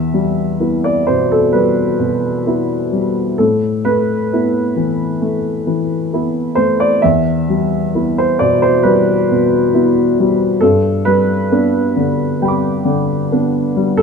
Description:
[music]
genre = neoclassical minimalist piano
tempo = 66 BPM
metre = 4/4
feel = rubato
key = E minor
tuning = A4 = 436 Hz
[part]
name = warm upright piano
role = solo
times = 0.0-14.0 s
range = E2 to D6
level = -12 LUFS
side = equal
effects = none
[sound]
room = light reverb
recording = minimal, uncompressed stereo recording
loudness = -13 LUFS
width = side -5 dB against mid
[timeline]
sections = 0.0-14.0 A section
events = none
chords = 0.0 Em; 3.4 Asus2; 7.0 Em; 10.6 G

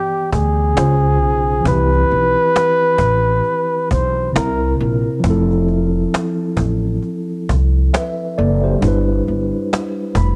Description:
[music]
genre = lo-fi hip hop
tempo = 67 BPM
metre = 4/4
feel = swing 58% on 16ths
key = unclear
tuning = A4 = 440 Hz
[part]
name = breathy flugelhorn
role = melody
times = 0.0-4.8 s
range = G4 to C5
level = -19 LUFS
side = equal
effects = none
[part]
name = mellow tine electric piano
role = accompaniment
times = 0.0-10.4 s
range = C3 to B5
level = -22 LUFS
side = equal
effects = cassette tape
[part]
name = upright bass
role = bass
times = 0.3-10.4 s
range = F1 to D2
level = -20 LUFS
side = equal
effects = none
[part]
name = cajon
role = drums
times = 0.3-10.4 s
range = none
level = -23 LUFS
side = equal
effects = vintage 12-bit sampler grit
[sound]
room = studio reverb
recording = dry, gritty hardware recording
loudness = -17 LUFS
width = mono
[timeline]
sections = 0.0-10.4 A section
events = tine electric piano fill 9.7-10.4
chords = 0.0 Em7; 0.8 C#maj7; 1.7 Cmaj7; 4.3 C7; 5.2 Fmaj7; 8.8 G6

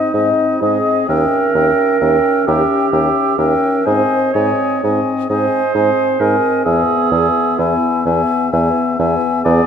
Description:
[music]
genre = classical, slow romantic movement for wind quintet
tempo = 43 BPM (dotted quarters)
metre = 6/8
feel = uneven beats, rubato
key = unclear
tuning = A4 = 444 Hz
[part]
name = mellow hollow silver concert flute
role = melody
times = 0.0-9.7 s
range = Eb5 to Ab5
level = -20 LUFS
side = left 9 dB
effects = none
[part]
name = warm oboe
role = second line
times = 0.0-9.7 s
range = D5 to E5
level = -22 LUFS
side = left 3 dB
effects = none
[part]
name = warm French horn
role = accompaniment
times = 0.0-9.7 s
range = B3 to Db4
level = -21 LUFS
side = left 1 dB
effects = none
[part]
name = warm clarinet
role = accompaniment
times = 0.0-9.7 s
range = Eb4 to Db5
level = -17 LUFS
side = right 6 dB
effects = none
[part]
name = mellow bassoon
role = bass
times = 0.1-9.6 s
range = Eb2 to Ab2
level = -18 LUFS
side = right 2 dB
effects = none
[sound]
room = moderate concert hall reverb, RT60 2.3 s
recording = none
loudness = -13 LUFS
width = side -7 dB against mid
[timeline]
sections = 0.0-9.7 A section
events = none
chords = 0.0 Ab; 1.1 Eb7b9; 3.9 Ab; 6.7 E

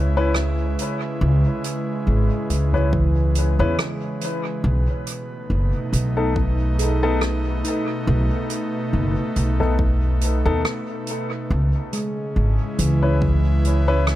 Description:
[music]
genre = ambient dub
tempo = 70 BPM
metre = 4/4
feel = swing 56% on 16ths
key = C# minor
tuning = A4 = 444 Hz
[part]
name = airy breathy pad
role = sustained chords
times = 0.0-14.2 s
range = B2 to B4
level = -26 LUFS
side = right 1 dB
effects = chorus
[part]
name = upright bass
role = bass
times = 0.0-14.2 s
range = F#1 to E2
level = -19 LUFS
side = equal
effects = none
[part]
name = warm upright piano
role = stabs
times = 0.2-14.0 s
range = B3 to B4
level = -26 LUFS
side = left 3 dB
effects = dub echo
[part]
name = soft-mallet drum kit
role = drums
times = 0.3-14.2 s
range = hi-hat, rim click, toms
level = -30 LUFS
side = right 1 dB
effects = dub echo
[part]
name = handpan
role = arpeggios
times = 2.1-14.2 s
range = E3 to G#4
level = -30 LUFS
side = right 1 dB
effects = analog delay
[part]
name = electronic kick drum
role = drums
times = 2.9-13.4 s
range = none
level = -24 LUFS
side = equal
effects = none
[sound]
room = studio ambience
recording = echo-heavy mix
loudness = -19 LUFS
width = side -14 dB against mid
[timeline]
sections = 0.0-14.2 A section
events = none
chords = 0.0 C#m7; 4.6 B7; 11.5 C#m7

